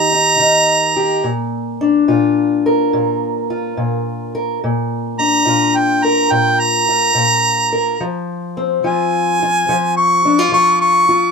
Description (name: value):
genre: acoustic country blues, solo or duo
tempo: 71 BPM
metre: 4/4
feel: swing 67% on 8ths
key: Bb mixolydian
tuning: A4 = 440 Hz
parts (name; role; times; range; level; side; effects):
- clear harmonica; melody; 0.0-11.3 s; G5 to Db6; -13 LUFS; right 1 dB; none
- fingerpicked steel-string acoustic guitar; accompaniment; 0.0-11.3 s; Bb2 to Bb4; -16 LUFS; left 2 dB; none
room: moderate booth ambience, RT60 0.2 s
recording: minimal, uncompressed stereo recording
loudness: -13 LUFS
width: side -5 dB against mid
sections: 0.0-11.3 A section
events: none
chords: 0.0 Eb; 1.2 Bb; 8.0 F5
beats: 0.40 | 1.24 2.09 2.93 3.77 | 4.62 5.46 6.30 7.15 | 7.99 8.83 9.67 10.51